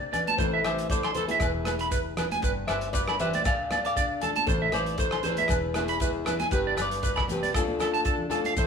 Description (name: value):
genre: highlife guitar band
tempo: 117 BPM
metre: 4/4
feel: swing 54% on 16ths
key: A minor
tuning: A4 = 438 Hz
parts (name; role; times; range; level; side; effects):
- flamenco guitar; accompaniment; 0.0-8.7 s; E2 to G4; -36 LUFS; left 6 dB; none
- fingered electric bass; bass; 0.0-8.7 s; E1 to D2; -36 LUFS; equal; none
- electric guitar at the edge of break-up; arpeggios; 0.1-8.6 s; A4 to D6; -28 LUFS; right 4 dB; none
- warm soul drum kit; drums; 0.1-8.7 s; hi-hat, kick drum, rim click; -31 LUFS; equal; none
- agogo bells; percussion; 0.1-8.4 s; none; -37 LUFS; left 12 dB; none
- congas; percussion; 0.1-8.6 s; none; -38 LUFS; right 1 dB; none
- maracas; percussion; 0.1-8.7 s; none; -42 LUFS; left 6 dB; none
- electric guitar at the edge of break-up; melody; 0.4-8.7 s; E4 to F5; -31 LUFS; left 2 dB; none
room: moderate large studio reverb, RT60 0.9 s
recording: band playing live in one room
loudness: -24 LUFS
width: side -6 dB against mid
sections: 0.0-8.6 A section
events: none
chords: 0.4 Am; 1.4 E; 2.4 G; 3.5 Dm; 4.5 Am; 5.5 E; 6.5 G; 7.5 Dm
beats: | 0.39 0.90 1.41 1.92 | 2.43 2.94 3.46 3.97 | 4.48 4.99 5.50 6.01 | 6.53 7.04 7.55 8.06 | 8.57